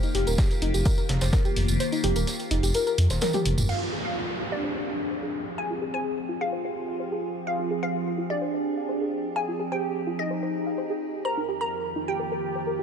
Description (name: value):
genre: melodic techno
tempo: 127 BPM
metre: 4/4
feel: straight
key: F dorian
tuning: A4 = 440 Hz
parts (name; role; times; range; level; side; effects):
- evolving wavetable pad; sustained chords; 0.0-12.8 s; F2 to Ab4; -33 LUFS; equal; phaser, built-in reverb, sidechain pumping
- soft round pluck; arpeggios; 0.0-12.8 s; Eb4 to F5; -32 LUFS; equal; lush chorus, sidechain pumping, tape echo
- punchy analog drum machine; drums; 0.0-3.8 s; crash cymbal, hi-hat, toms; -32 LUFS; left 2 dB; none
- tambourine; percussion; 0.0-3.7 s; none; -36 LUFS; right 3 dB; none
- dark detuned saw bass; bass; 0.1-3.7 s; Eb1 to F2; -24 LUFS; equal; sidechain pumping
- breakbeat sampler-style drum kit; drums; 0.1-3.6 s; hi-hat, snare drum; -39 LUFS; equal; sidechain pumping on hats, high-pass filter on hats, high-pass filter on snare
- electronic kick drum; drums; 0.4-1.4 s; none; -23 LUFS; equal; none
- mellow synth brass; melody; 3.7-12.8 s; D4 to Bb4; -31 LUFS; equal; chorus, phaser, tape echo
- glassy wavetable pluck; second line; 3.7-12.8 s; D5 to Bb5; -33 LUFS; left 1 dB; chorus, sidechain pumping, tape echo
- downlifter; sound effects; 3.7-7.5 s; none; -36 LUFS; equal; none
room: light reverb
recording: dark, warm production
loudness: -24 LUFS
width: side -7 dB against mid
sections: 0.0-3.7 A section; 3.7-12.8 B section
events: kick drops out 1.8-3.7; drum fill 3.2-3.7; filter sweep on synth arpeggio sound 3.7-12.8; filter sweep on analog polysynth 3.7-12.8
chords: 0.0 Eb; 3.7 Fm; 11.2 Eb6/F